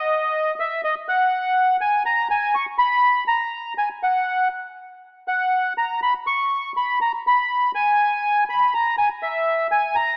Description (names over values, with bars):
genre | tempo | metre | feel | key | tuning
tango | 122 BPM | 4/4 | rubato | B major | A4 = 440 Hz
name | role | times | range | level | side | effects
bandoneon | solo | 0.0-10.2 s | D#5 to C#6 | -21 LUFS | equal | none
room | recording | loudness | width
moderate scoring stage reverb, RT60 2.1 s | telephone sound | -21 LUFS | mono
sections
0.0-10.2 A section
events
none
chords
none